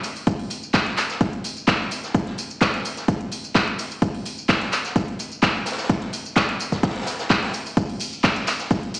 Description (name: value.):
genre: house.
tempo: 128 BPM.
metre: 4/4.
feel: straight.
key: none.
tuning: none.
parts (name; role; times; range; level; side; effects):
house drum kit; drums; 0.0-9.0 s; handclaps, hi-hat, ride cymbal, tambourine; -23 LUFS; equal; none.
swinging big-band drum kit; drums; 0.0-9.0 s; hi-hat, snare drum; -32 LUFS; equal; sidechain pumping on hats, high-pass filter on hats, high-pass filter on snare, high-pass filter on room.
electronic kick drum; drums; 0.3-8.8 s; none; -21 LUFS; equal; none.
tambourine; percussion; 7.8-9.0 s; none; -37 LUFS; equal; none.
room: light reverb, small room ambience.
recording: played on a big sound system in a bare room, stone room reverb, small speaker sound.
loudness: -20 LUFS.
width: side -24 dB against mid.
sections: 0.0-9.0 A section.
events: none.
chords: none.